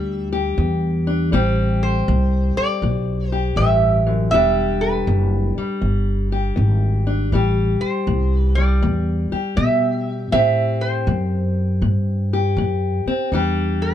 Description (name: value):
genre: acoustic country blues, solo or duo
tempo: 80 BPM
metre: 4/4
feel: swing 66% on 8ths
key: unclear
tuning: A4 = 440 Hz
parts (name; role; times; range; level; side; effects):
- metal-body resonator slide guitar; melody; 0.0-13.9 s; B4 to E5; -22 LUFS; right 4 dB; plate reverb
- fingerpicked steel-string acoustic guitar; accompaniment; 0.0-13.9 s; E2 to G4; -23 LUFS; left 4 dB; none
- upright bass; bass; 0.0-13.9 s; E1 to B2; -19 LUFS; equal; none
room: little or no reverb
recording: dark, warm production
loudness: -17 LUFS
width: side -10 dB against mid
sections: 0.0-13.9 A section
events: none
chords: 0.0 Em7; 1.3 Am7; 4.3 Em7; 7.3 Am7; 13.3 Em7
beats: 0.58 | 1.33 2.08 2.82 3.57 | 4.32 5.07 5.82 6.57 | 7.32 8.07 8.82 9.57 | 10.33 11.08 11.83 12.58 | 13.33